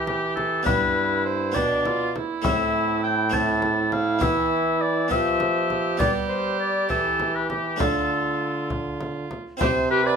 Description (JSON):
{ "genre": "classical, renaissance-style consort dance", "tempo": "67 BPM (dotted quarters)", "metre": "6/8", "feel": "straight", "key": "unclear", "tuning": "A4 = 435 Hz", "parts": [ { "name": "warm oboe", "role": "melody", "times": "0.0-10.2 s", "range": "G4 to A5", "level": "-24 LUFS", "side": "left 4 dB", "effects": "none" }, { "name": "warm viola", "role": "second line", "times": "0.0-10.2 s", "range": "D4 to B4", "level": "-28 LUFS", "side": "right 8 dB", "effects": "none" }, { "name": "harpsichord", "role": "accompaniment", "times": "0.0-10.2 s", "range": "G2 to G4", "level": "-30 LUFS", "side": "right 1 dB", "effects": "none" }, { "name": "bright trombone", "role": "bass", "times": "0.0-10.2 s", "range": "G2 to G3", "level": "-28 LUFS", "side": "right 2 dB", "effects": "none" }, { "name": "frame drum", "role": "percussion", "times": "0.1-9.9 s", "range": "none", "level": "-29 LUFS", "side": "left 1 dB", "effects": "none" } ], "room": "moderate large studio reverb, RT60 1.1 s", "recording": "minimal, uncompressed stereo recording", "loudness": "-21 LUFS", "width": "side -6 dB against mid", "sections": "0.0-9.6 A section", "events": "none", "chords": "0.0 Em; 0.7 G; 2.4 Am; 4.2 Em; 6.0 G; 7.8 Dm; 9.6 C" }